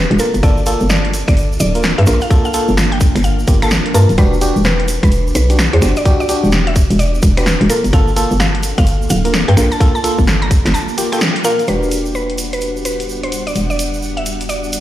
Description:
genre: UK garage, two-step garage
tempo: 128 BPM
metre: 4/4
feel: swing 63% on 16ths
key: unclear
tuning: A4 = 440 Hz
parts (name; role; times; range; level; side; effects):
- mallet-like synth pluck; melody; 0.0-14.7 s; A4 to Bb5; -23 LUFS; equal; chorus, ping-pong delay
- ethereal airy pad; sustained chords; 0.0-14.8 s; G3 to F#5; -25 LUFS; equal; ensemble chorus, built-in reverb, tremolo, sidechain pumping
- hollow knocking FM bass; bass; 0.0-14.8 s; D1 to G2; -15 LUFS; equal; none
- punchy analog drum machine; drums; 0.1-14.8 s; finger snaps, hi-hat, snare drum; -19 LUFS; equal; none
- FM electric piano; stabs; 0.2-14.8 s; Bb3 to Bb4; -20 LUFS; equal; chorus, ping-pong delay
- egg shaker; percussion; 0.2-14.8 s; none; -27 LUFS; right 4 dB; none
- electronic kick drum; drums; 0.4-10.6 s; none; -12 LUFS; equal; none
room: light reverb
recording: played on a big sound system in a bare room, stone room reverb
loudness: -12 LUFS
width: side -14 dB against mid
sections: 0.0-11.7 A section; 11.7-14.8 B section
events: break 10.7-11.7; band accent 11.2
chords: 0.2 Gm9; 4.2 Em9; 7.7 Gm9; 11.7 Em9

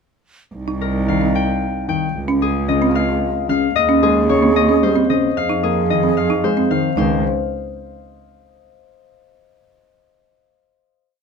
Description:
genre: classical, minimalist pattern music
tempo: 112 BPM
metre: 3/4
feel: straight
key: Db lydian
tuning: A4 = 440 Hz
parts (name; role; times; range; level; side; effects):
- alto flute; second line; 0.5-6.8 s; Eb4 to Ab4; -23 LUFS; right 8 dB; none
- warm cello; bass; 0.5-7.2 s; C2 to F2; -22 LUFS; right 3 dB; none
- folk marimba with medium mallets; arpeggios; 0.7-7.2 s; C4 to Eb4; -21 LUFS; right 4 dB; none
- concert harp; melody; 0.8-8.6 s; Ab4 to G5; -20 LUFS; left 7 dB; none
- dark grand piano; accompaniment; 1.1-7.2 s; Db3 to Bb3; -21 LUFS; left 5 dB; none
room: light reverb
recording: minimal, uncompressed stereo recording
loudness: -15 LUFS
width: side -5 dB against mid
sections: 0.5-7.0 A section; 7.0-8.6 final chord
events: none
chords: 0.5 Cm7; 2.1 Dbadd9; 3.8 Eb13sus4; 5.4 Fm7; 7.0 Dbadd9

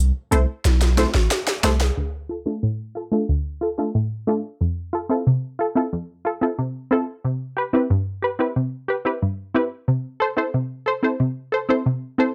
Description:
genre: dancehall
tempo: 91 BPM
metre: 4/4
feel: straight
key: unclear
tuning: A4 = 437 Hz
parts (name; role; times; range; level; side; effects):
- punchy sub bass; bass; 0.0-1.9 s; A1 to C2; -20 LUFS; equal; none
- punchy chord stab; accompaniment; 0.3-12.3 s; D2 to C5; -23 LUFS; equal; chorus, low-pass filter
- island pop drum kit; drums; 0.3-2.0 s; hi-hat, snare drum; -25 LUFS; equal; overdrive
room: light reverb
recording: none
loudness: -23 LUFS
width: mono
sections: 0.0-2.0 A section; 2.0-12.3 B section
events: drum fill 0.7-2.0; filter sweep on synth stab 2.0-12.3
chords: 0.0 Am/C; 2.0 Dm; 4.6 Fmaj7; 7.2 Cmaj7; 9.9 Am/C

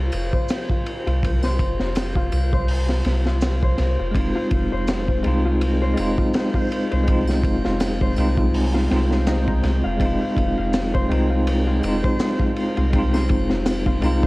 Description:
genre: trip hop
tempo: 82 BPM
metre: 4/4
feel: swing 56% on 16ths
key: F minor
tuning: A4 = 436 Hz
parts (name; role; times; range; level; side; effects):
- Celtic harp; arpeggios; 0.0-14.3 s; Eb4 to F5; -28 LUFS; left 2 dB; low-pass filter, tape echo
- soft dub sub bass; bass; 0.0-14.3 s; F1 to C2; -22 LUFS; equal; none
- backwards swelling texture; texture; 0.0-14.3 s; C5; -36 LUFS; left 1 dB; built-in reverb
- crunchy breakbeat drum kit; drums; 0.1-14.3 s; hi-hat, kick drum, ride cymbal, snare drum; -23 LUFS; equal; none
- triangle and maracas; percussion; 0.1-14.2 s; none; -44 LUFS; right 2 dB; none
- bell-like tine electric piano; accompaniment; 4.1-14.3 s; Ab3 to F4; -22 LUFS; equal; fast stereo tremolo, tape echo
room: light reverb, small room reverb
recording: worn, warbling old tape, cassette tape, vinyl crackle, warbly pitch drift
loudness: -18 LUFS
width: side -21 dB against mid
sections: 0.0-14.3 A section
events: filter sweep on harp 0.0-14.3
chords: 0.0 Fm7

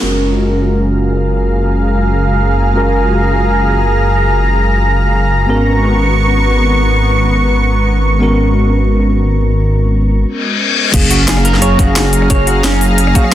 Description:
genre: liquid drum and bass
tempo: free time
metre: none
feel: none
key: F# major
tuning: A4 = 439 Hz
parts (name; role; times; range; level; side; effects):
- bell-like tine electric piano; accompaniment; 0.0-13.3 s; F#3 to E#5; -16 LUFS; right 1 dB; phaser, low-pass filter, tape echo
- lush unison pad; sustained chords; 0.0-13.3 s; B3 to C#6; -16 LUFS; equal; chorus, sidechain pumping
- swelling detuned saw bass; bass; 0.0-13.1 s; F#1 to G#1; -13 LUFS; equal; none
- reverse cymbal and sub drop; sound effects; 10.3-12.3 s; none; -17 LUFS; left 4 dB; none
- drum and bass drum kit; drums; 10.9-13.3 s; crash cymbal, hi-hat, rim click, snare drum; -16 LUFS; left 1 dB; small room ambience
- electronic kick drum; drums; 10.9-13.2 s; none; -12 LUFS; equal; small room ambience
- electric guitar through a small old amp; arpeggios; 11.1-13.2 s; C#4 to C#5; -20 LUFS; right 4 dB; tape echo
room: light reverb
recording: dense, heavily limited modern master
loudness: -10 LUFS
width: side -12 dB against mid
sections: 0.0-10.9 A section; 10.9-13.3 B section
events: filter sweep on tine electric piano 0.0-10.9; filter sweep on analog synth pad 0.0-10.9; reverse cymbal 10.3-10.9; drop 10.9-13.3; impact 10.9-12.3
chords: 0.0 F#maj9; 5.5 G#m11; 10.9 F#maj9

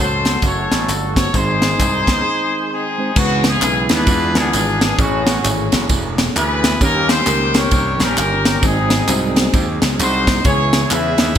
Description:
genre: uptempo gospel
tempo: 132 BPM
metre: 4/4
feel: swing 62% on 8ths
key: C# minor from 3.2 s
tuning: A4 = 440 Hz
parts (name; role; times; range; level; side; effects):
- clear horn section; melody; 0.0-11.4 s; B3 to E5; -19 LUFS; left 1 dB; digital delay
- mellow tine electric piano; accompaniment; 0.0-11.4 s; G#2 to B#5; -23 LUFS; left 2 dB; slow stereo tremolo
- percussive tonewheel organ; sustained chords; 0.0-11.4 s; D#3 to F5; -27 LUFS; right 4 dB; slow rotary speaker, overdrive, chorus vibrato
- warm French horn section; sustained chords; 0.0-3.1 s; D#3 to F#4; -32 LUFS; equal; none
- gritty slap bass; bass; 0.0-11.4 s; E1 to E2; -21 LUFS; equal; overdrive
- crisp fusion drum kit; drums; 0.3-11.4 s; crash cymbal, hi-hat, kick drum, ride cymbal, snare drum; -18 LUFS; equal; gated reverb
- tambourine and handclaps; percussion; 0.3-11.3 s; none; -26 LUFS; equal; none
room: light reverb, small room reverb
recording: bright 1980s-style digital production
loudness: -14 LUFS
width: side -9 dB against mid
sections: 0.0-3.2 A section; 3.2-11.4 B section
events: break 2.3-3.2; tine electric piano fill 2.5-3.2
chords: 0.0 F#m; 1.3 G#; 3.2 C#m7; 4.1 E7b9; 5.0 Amaj7; 6.8 D#7; 8.6 G#7; 10.5 C#m7

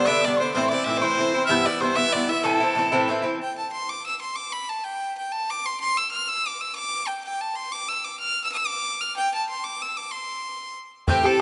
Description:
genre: celtic folk, Celtic jig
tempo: 125 BPM (dotted quarters)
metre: 6/8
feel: straight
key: A minor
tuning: A4 = 440 Hz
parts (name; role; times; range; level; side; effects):
- clear fiddle; melody; 0.0-11.4 s; G4 to F6; -27 LUFS; equal; none
- wooden whistle; second line; 0.0-3.1, 11.1-11.4 s; G5 to G6; -30 LUFS; equal; none
- Irish bouzouki; accompaniment; 0.0-3.4, 11.1-11.4 s; G2 to G4; -25 LUFS; equal; none
- bodhran; percussion; 11.1-11.3 s; none; -26 LUFS; equal; none
room: moderate lush hall reverb, RT60 2.5 s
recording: rough home demo mix, nothing above 10.8 kHz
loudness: -25 LUFS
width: mono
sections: 0.0-3.4 A section; 3.4-11.1 B section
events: none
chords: 0.0 G; 0.5 Am; 1.5 Em; 2.4 Am; 3.4 N.C.

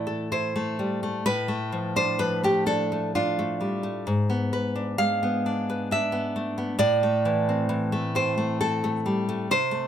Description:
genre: romantic piece for solo classical guitar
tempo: 65 BPM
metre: 3/4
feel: uneven beats, rubato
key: A minor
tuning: A4 = 440 Hz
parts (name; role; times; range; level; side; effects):
- nylon-string guitar; solo; 0.0-9.9 s; G#2 to F5; -23 LUFS; equal; none
room: light reverb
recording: close, detailed microphones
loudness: -23 LUFS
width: side -9 dB against mid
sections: 0.0-9.9 A section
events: none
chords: 0.0 Am; 1.3 Dm/A; 4.1 E7/G#; 6.8 Am

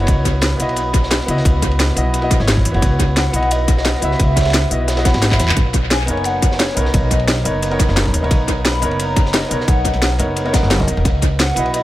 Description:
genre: liquid drum and bass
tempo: 175 BPM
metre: 4/4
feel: straight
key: C# dorian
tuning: A4 = 440 Hz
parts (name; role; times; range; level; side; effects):
- warm grand piano; accompaniment; 0.0-11.8 s; B3 to F#5; -21 LUFS; equal; tape echo
- upright bass; bass; 0.0-11.8 s; F#1 to E2; -18 LUFS; equal; none
- crunchy breakbeat drum kit; drums; 0.0-11.8 s; ride cymbal, snare drum; -26 LUFS; equal; high-pass filter on cymbals, high-pass filter on snare, high-pass filter on room, tape echo
- drum and bass drum kit; drums; 0.1-11.8 s; handclaps, hi-hat, snare drum; -21 LUFS; equal; tape echo
- electronic kick drum; drums; 0.1-11.3 s; none; -16 LUFS; equal; none
- hollow clarinet-like synth lead; melody; 3.2-11.8 s; C#5 to B5; -24 LUFS; equal; lush chorus, tape echo
room: moderate spring reverb, RT60 1.8 s, small room ambience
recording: echo-heavy mix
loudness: -14 LUFS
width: side -15 dB against mid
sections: 0.0-11.8 A section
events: drum fill 5.3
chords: 0.1 C#m11; 5.6 Bmaj9; 11.1 C#m11

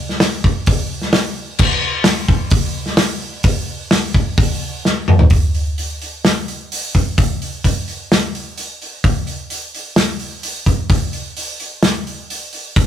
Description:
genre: rock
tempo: 129 BPM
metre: 4/4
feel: straight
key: none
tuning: none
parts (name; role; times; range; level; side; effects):
- loose indie drum kit; drums; 0.1-12.9 s; crash cymbal, hi-hat, kick drum, snare drum, toms; -15 LUFS; equal; none
room: light reverb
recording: rough rehearsal-room recording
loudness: -15 LUFS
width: side -10 dB against mid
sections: 0.0-5.3 A section; 5.3-12.9 B section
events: drum fill 4.9-5.3; half time 5.3-12.9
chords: none

